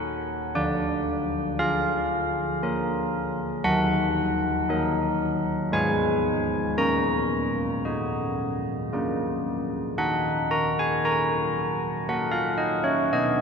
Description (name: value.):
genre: classical, tune for church bells.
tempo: 57 BPM.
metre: 3/4.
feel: straight.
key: Eb minor.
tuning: A4 = 440 Hz.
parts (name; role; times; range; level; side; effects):
carillon bells; solo; 0.0-13.4 s; D3 to Bb5; -23 LUFS; equal; none.
room: wet cathedral reverb, RT60 5.7 s.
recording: dark, warm production.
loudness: -23 LUFS.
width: side -6 dB against mid.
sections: 0.0-13.4 A section.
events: none.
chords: 0.0 Ebm; 0.5 Bb/D; 3.6 Ebm; 5.7 Fdim/Ab; 6.8 Ebm/Bb; 8.9 Bb; 10.0 Ebm.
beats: | 0.55 1.58 2.61 | 3.63 4.68 5.73 | 6.79 7.85 8.91 | 9.98 11.03 12.08 | 13.13.